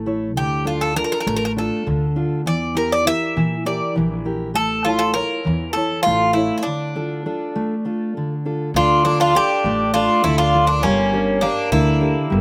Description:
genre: greek folk, Greek bouzouki band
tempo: 201 BPM (eighths)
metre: 7/8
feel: straight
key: D harmonic minor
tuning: A4 = 440 Hz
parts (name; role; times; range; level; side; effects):
- fingerpicked steel-string acoustic guitar; accompaniment; 0.0-12.4 s; D3 to C#5; -24 LUFS; equal; none
- upright bass; bass; 0.0-12.4 s; G1 to Bb2; -29 LUFS; equal; none
- Greek bouzouki; melody; 0.4-12.4 s; C#4 to E5; -22 LUFS; equal; none
- Greek bouzouki; second line; 8.8-12.4 s; A3 to D4; -26 LUFS; equal; slapback echo
room: little or no reverb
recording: recorded outdoors, with no room sound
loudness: -19 LUFS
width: mono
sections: 0.0-8.8 A section; 8.8-12.4 A section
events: break 6.7-8.8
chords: 0.4 Dm; 2.5 Edim; 4.6 A; 6.7 Dm; 10.8 Gm

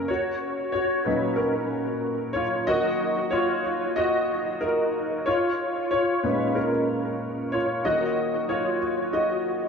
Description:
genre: pop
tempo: 93 BPM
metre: 4/4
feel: swing 56% on 16ths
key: F# major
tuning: A4 = 440 Hz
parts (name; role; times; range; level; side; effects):
- warm concert grand piano; solo; 0.0-9.7 s; F#2 to D#5; -23 LUFS; equal; ensemble chorus, analog delay
room: wet plate reverb, RT60 2.7 s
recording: dreamy mix soaked in reverb, small room ambience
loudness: -23 LUFS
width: side -6 dB against mid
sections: 0.1-9.7 A section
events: grand piano solo 0.1-9.7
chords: 0.1 F#; 2.7 D#madd9; 5.3 A#m7; 7.8 D#madd9

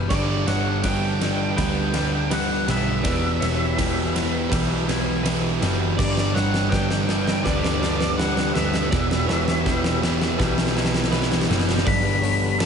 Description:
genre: post-rock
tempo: 82 BPM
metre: 4/4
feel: straight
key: unclear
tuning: A4 = 440 Hz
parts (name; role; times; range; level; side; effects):
- hand-pumped harmonium; sustained chords; 0.0-12.7 s; E3 to B5; -35 LUFS; right 3 dB; none
- twangy electric guitar; arpeggios; 0.0-12.7 s; E2 to E4; -33 LUFS; left 1 dB; none
- twelve-string electric guitar; arpeggios; 0.0-12.7 s; B4 to D5; -37 LUFS; right 4 dB; none
- overdriven semi-hollow guitar; riff; 0.0-12.7 s; E2 to G4; -27 LUFS; left 10 dB; none
- hollow-body short-scale picked electric bass; bass; 0.0-12.7 s; E1 to D2; -26 LUFS; equal; none
- octave-fuzz lead guitar; melody; 0.1-12.7 s; D5 to B5; -28 LUFS; left 1 dB; distortion, tape echo
- thick fuzz guitar; riff; 0.1-11.8 s; E2 to G3; -27 LUFS; right 13 dB; distortion
- huge arena drum kit; drums; 0.1-12.7 s; crash cymbal, hi-hat, kick drum, ride cymbal, snare drum; -24 LUFS; equal; none
room: light reverb, studio ambience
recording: nothing above 11.0 kHz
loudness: -19 LUFS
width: side -6 dB against mid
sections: 0.0-11.9 A section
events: build-up 0.0-11.9; drum fill 0.0-11.9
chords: 0.1 G; 3.0 Em; 6.0 G; 8.9 Em; 11.9 G

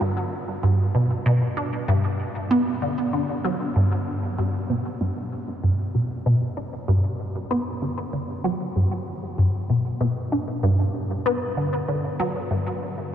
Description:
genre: ambient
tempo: 96 BPM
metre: 4/4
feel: straight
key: G major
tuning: A4 = 440 Hz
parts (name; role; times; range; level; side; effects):
- resonant blip pluck; solo; 0.0-12.6 s; G2 to D4; -22 LUFS; equal; phaser, wide subtle chorus, tape echo
room: wet huge ambient reverb, RT60 8.0 s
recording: dark, warm production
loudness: -22 LUFS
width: side -10 dB against mid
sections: 0.0-5.0 A section; 5.0-13.1 B section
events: none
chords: none

